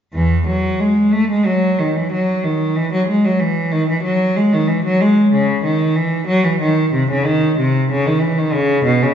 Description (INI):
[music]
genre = classical, baroque-style suite movement for unaccompanied cello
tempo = 93 BPM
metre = 4/4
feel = rubato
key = E major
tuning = A4 = 442 Hz
[part]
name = rich cello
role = solo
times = 0.1-9.1 s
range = E2 to A3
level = -14 LUFS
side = equal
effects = none
[sound]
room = wet recital hall reverb, RT60 1.5 s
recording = heard from further back in the room, nothing above 7.6 kHz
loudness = -14 LUFS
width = side -8 dB against mid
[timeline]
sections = 0.2-9.1 A section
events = none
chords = none